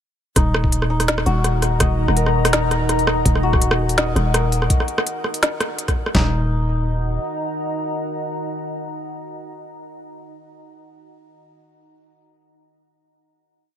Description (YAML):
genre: half-time drum and bass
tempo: 166 BPM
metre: 4/4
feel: swing 54% on 16ths, half-time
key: Eb minor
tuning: A4 = 440 Hz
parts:
  - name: deep dark ambient pad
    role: sustained chords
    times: 1.2-9.8 s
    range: Eb4 to Bb5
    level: -26 LUFS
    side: left 1 dB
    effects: chorus, built-in reverb, sidechain pumping
  - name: santur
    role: arpeggios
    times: 0.4-9.7 s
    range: Eb4 to Eb5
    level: -27 LUFS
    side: left 3 dB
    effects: tape echo
  - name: growling 808-style bass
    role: bass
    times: 0.4-7.2 s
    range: Eb1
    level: -20 LUFS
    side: equal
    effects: none
  - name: boom bap sampler-style drum kit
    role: drums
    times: 0.4-6.2 s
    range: kick drum, snare drum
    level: -19 LUFS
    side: equal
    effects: none
  - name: organic electronic drum kit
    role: drums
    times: 0.4-6.1 s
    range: hi-hat, rim click, snare drum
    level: -21 LUFS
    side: right 1 dB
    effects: none
room: light reverb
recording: none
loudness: -17 LUFS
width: side -10 dB against mid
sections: 0.4-6.1 drop; 6.1-9.0 final chord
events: drop 0.4-6.1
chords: 0.4 Ebm